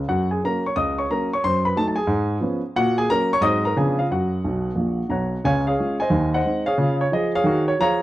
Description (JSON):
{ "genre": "jazz, stride piano", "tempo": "180 BPM", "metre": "4/4", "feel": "swing 66% on 8ths", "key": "F# major", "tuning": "A4 = 440 Hz", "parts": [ { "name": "warm baby grand piano", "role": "solo", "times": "0.0-8.0 s", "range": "A#1 to D#6", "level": "-19 LUFS", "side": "equal", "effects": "none" } ], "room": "small room ambience", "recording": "dry, close 1970s-style studio recording", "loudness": "-19 LUFS", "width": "side -15 dB against mid", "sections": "0.0-5.4 A section; 5.4-8.0 B section", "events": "grand piano fill 4.4-5.4", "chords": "0.1 F#; 1.4 F#dim7; 2.1 C#7/G#; 2.8 F#/A#; 3.4 G#7; 3.8 C#7b9; 4.1 F#; 5.4 Db; 6.1 Ab7/Eb; 6.8 Db" }